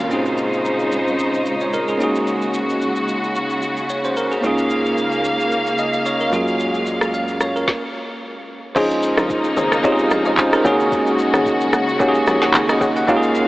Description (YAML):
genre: amapiano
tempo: 111 BPM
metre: 4/4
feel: swing 55% on 16ths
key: Bb minor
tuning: A4 = 440 Hz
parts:
  - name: bell-like tine electric piano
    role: accompaniment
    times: 0.0-13.5 s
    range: Bb2 to Gb5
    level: -19 LUFS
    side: right 1 dB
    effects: medium stereo tremolo
  - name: rich studio string section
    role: sustained chords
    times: 0.0-13.5 s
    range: Bb2 to F5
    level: -22 LUFS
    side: left 1 dB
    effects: sidechain pumping
  - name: hollow log drum bass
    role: bass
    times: 0.0-0.1, 8.8-13.5 s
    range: Gb1 to Db2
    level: -28 LUFS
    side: equal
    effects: none
  - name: smooth R&B drum kit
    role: drums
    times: 0.1-13.5 s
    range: crash cymbal, handclaps, kick drum, rim click, shaker, snare drum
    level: -24 LUFS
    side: equal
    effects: none
  - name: plucky analog bass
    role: bass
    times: 4.4-7.7 s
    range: Db2 to Gb2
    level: -32 LUFS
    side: equal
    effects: none
  - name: soft round pluck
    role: stabs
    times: 8.8-13.5 s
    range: Ab4 to Gb5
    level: -24 LUFS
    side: left 2 dB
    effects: none
room: wet huge ambient reverb, RT60 5.0 s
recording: dreamy mix soaked in reverb, AM radio sound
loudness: -16 LUFS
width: side -18 dB against mid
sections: 0.1-8.8 A section; 8.8-13.5 B section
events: stop 7.7-8.8; drop 8.8-13.5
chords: 0.1 Bbm11; 2.0 Ab7sus4; 4.4 Db6; 6.3 Gbmaj9; 8.8 Bbm11; 10.7 Ab7sus4